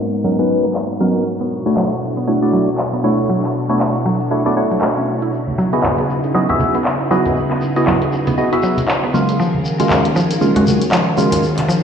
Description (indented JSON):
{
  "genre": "deep house",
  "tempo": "118 BPM",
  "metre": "4/4",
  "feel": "swing 58% on 16ths",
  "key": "unclear",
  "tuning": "A4 = 440 Hz",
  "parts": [
    { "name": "soft string machine", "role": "sustained chords", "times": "0.0-11.8 s", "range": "G#2 to C#5", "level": "-21 LUFS", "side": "equal", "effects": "ensemble chorus" },
    { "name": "deep house drum kit", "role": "drums", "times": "0.1-11.7 s", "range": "handclaps, hi-hat", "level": "-22 LUFS", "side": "left 1 dB", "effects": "low-pass filter on hats, low-pass filter on snare, low-pass filter on cymbals, low-pass filter on room" },
    { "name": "mallet-like synth pluck", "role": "arpeggios", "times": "0.2-11.8 s", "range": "E#3 to E4", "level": "-22 LUFS", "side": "right 2 dB", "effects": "chorus, ping-pong delay" },
    { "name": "percussive organ stab", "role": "stabs", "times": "0.2-11.4 s", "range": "C#3 to E5", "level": "-17 LUFS", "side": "equal", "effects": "chorus, phaser, ping-pong delay" },
    { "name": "shekere", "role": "percussion", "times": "5.3-11.8 s", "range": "none", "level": "-33 LUFS", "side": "left 4 dB", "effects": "none" },
    { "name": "congas and bongos", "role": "percussion", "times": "5.5-11.7 s", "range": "none", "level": "-24 LUFS", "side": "right 2 dB", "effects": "none" }
  ],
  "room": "moderate plate reverb, RT60 1.9 s",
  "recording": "played on a big sound system in a bare room, stone room reverb, low-pass filter",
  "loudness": "-14 LUFS",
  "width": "side -7 dB against mid",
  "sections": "0.0-11.8 A section",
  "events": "filter sweep on drum 0.0-11.8; filter sweep on synth arpeggio sound 0.0-11.8; filter sweep 0.0-11.8",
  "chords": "0.0 G#m11; 1.3 Bm11; 5.3 C#m11; 9.1 D#m11"
}